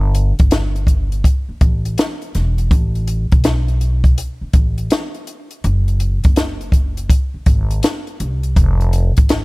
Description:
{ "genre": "hip hop, jazz-hop", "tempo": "82 BPM", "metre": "4/4", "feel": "swing 65% on 16ths", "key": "unclear", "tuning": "A4 = 440 Hz", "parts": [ { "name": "upright bass", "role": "bass", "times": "0.0-9.4 s", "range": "E1 to C2", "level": "-17 LUFS", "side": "equal", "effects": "none" }, { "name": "compact cocktail drum kit", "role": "drums", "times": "0.1-9.4 s", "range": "hi-hat, kick drum, snare drum", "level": "-14 LUFS", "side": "equal", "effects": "none" } ], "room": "little or no reverb", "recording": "none", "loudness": "-14 LUFS", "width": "side -24 dB against mid", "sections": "0.0-9.4 A section", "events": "none", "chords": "none" }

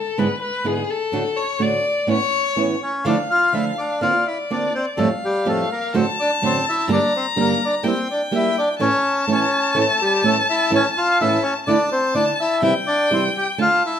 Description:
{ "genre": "tango", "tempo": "125 BPM", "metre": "4/4", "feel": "rubato", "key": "D minor from 3.1 s", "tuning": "A4 = 440 Hz", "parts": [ { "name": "rich violin", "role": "second line", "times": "0.0-14.0 s", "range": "G#4 to Bb5", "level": "-22 LUFS", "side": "left 3 dB", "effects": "none" }, { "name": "flamenco guitar", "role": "accompaniment", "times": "0.2-13.7 s", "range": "F2 to G#4", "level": "-21 LUFS", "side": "right 3 dB", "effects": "none" }, { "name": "bandoneon", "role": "melody", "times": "2.8-14.0 s", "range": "G3 to G5", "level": "-20 LUFS", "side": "left 1 dB", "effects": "none" } ], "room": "moderate large studio reverb, RT60 0.8 s", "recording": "minimal, uncompressed stereo recording", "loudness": "-17 LUFS", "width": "side -8 dB against mid", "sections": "0.0-3.1 A section; 3.1-14.0 B section", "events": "violin solo 0.0-3.1", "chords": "0.0 E7/G#; 1.1 D/A; 2.1 Aadd9; 3.1 Dmadd9; 4.0 Bbadd9/D; 5.0 Fadd9; 5.9 D7/F#; 6.9 Gm; 7.8 Edim/G; 8.8 A; 11.7 Dsus2; 12.6 C" }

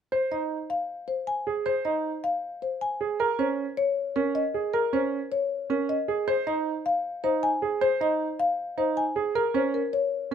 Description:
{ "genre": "classical, minimalist pattern music", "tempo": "156 BPM", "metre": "4/4", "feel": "straight", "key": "F minor", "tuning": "A4 = 441 Hz", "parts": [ { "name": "marimba with soft mallets", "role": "melody", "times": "0.1-10.3 s", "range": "Bb4 to Ab5", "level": "-27 LUFS", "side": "left 5 dB", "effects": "none" }, { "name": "clear grand piano", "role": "arpeggios", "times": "0.1-10.3 s", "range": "Db4 to C5", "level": "-27 LUFS", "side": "right 8 dB", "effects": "none" } ], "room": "light reverb", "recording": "close, detailed microphones", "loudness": "-25 LUFS", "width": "side -8 dB against mid", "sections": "0.1-10.3 A section", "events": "none", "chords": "0.1 Fm (rootless); 3.2 Eb7sus4 (rootless); 6.3 Fm (rootless); 9.4 Eb7(no3) (rootless)" }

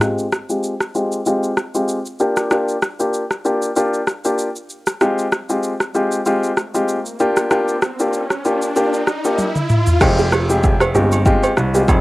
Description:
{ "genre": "afrobeats", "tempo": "96 BPM", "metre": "4/4", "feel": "swing 55% on 16ths", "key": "F dorian", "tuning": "A4 = 440 Hz", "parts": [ { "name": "warm grand piano", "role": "accompaniment", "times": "0.0-12.0 s", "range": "Ab3 to G4", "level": "-18 LUFS", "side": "left 1 dB", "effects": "low-pass filter, plate reverb" }, { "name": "afro-pop drum kit", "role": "drums", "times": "0.0-12.0 s", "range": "crash cymbal, kick drum, rim click, shaker, toms", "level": "-19 LUFS", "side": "equal", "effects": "cassette tape" }, { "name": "riser", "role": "sound effects", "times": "6.6-10.0 s", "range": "none", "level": "-26 LUFS", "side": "equal", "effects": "none" }, { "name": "clear concert grand piano", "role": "bass", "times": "10.0-12.0 s", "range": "F1 to C2", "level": "-18 LUFS", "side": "right 1 dB", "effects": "none" }, { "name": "agogo bells and woodblock", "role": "percussion", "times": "10.0-12.0 s", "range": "none", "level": "-27 LUFS", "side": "right 4 dB", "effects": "none" }, { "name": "kalimba", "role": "riff", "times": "10.2-11.8 s", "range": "F4 to C5", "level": "-22 LUFS", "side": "right 3 dB", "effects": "tape echo" } ], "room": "light reverb", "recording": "home recording on cassette", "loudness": "-15 LUFS", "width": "side -19 dB against mid", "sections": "0.0-10.0 A section; 10.0-12.0 B section", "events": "filter sweep on grand piano 0.0-10.0; riser 6.6-10.0; drum fill 9.4-10.0", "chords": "0.0 Fmadd9; 2.2 Gm7; 5.0 Fmadd9; 7.2 Gm7; 10.0 Fmadd9" }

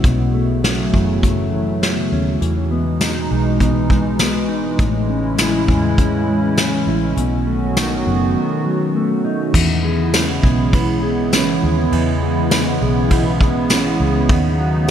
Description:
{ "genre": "dream pop", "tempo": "101 BPM", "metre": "4/4", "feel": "straight", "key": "unclear", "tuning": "A4 = 439 Hz", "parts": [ { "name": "hollow soft pad", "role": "sustained chords", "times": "0.0-14.9 s", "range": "B2 to F#4", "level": "-20 LUFS", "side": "right 2 dB", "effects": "chorus" }, { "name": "mellow electric guitar", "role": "arpeggios", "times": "0.0-14.9 s", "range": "A2 to B4", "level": "-20 LUFS", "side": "left 1 dB", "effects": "wide subtle chorus, digital delay" }, { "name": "vintage muted fingered electric bass", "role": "bass", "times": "0.0-14.9 s", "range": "F#1 to E2", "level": "-22 LUFS", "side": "equal", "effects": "none" }, { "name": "vintage brush drum kit", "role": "drums", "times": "0.0-14.4 s", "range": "crash cymbal, hi-hat, kick drum, ride cymbal, snare drum, tambourine", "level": "-19 LUFS", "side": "equal", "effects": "gated reverb" } ], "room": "wet lush hall reverb, RT60 3.1 s", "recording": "bright 1980s-style digital production", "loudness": "-14 LUFS", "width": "side -9 dB against mid", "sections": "0.0-9.5 A section; 9.5-14.9 B section", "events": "none", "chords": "0.0 B9sus4; 2.4 Emaj7; 4.8 Amaj7; 7.2 B7; 9.5 E6; 14.3 B9" }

